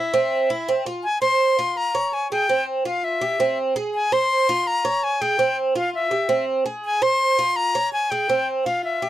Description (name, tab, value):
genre	latin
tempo	165 BPM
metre	4/4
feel	straight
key	F harmonic minor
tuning	A4 = 443 Hz
part	breathy bright silver concert flute	melody	0.0-9.1 s	E5 to C6	-21 LUFS	left 2 dB	none
part	Cuban tres	arpeggios	0.0-9.1 s	C4 to Db5	-22 LUFS	right 3 dB	none
room	light reverb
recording	dry, close 1970s-style studio recording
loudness	-19 LUFS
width	side -13 dB against mid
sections	0.0-1.0 A section; 1.0-9.1 B section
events	none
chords	0.0 C; 1.0 F5; 1.8 Bbm7; 2.5 F5; 3.2 C; 3.9 Fm; 4.7 Bbm7; 5.4 F5; 6.1 C; 6.8 Fm; 7.6 Bbm7; 8.3 F5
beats	0.32 0.68 | 1.04 1.40 1.77 2.13 | 2.49 2.85 3.22 3.58 | 3.94 4.30 4.67 5.03 | 5.39 5.75 6.12 6.48 | 6.84 7.21 7.57 7.93 | 8.29 8.66 9.02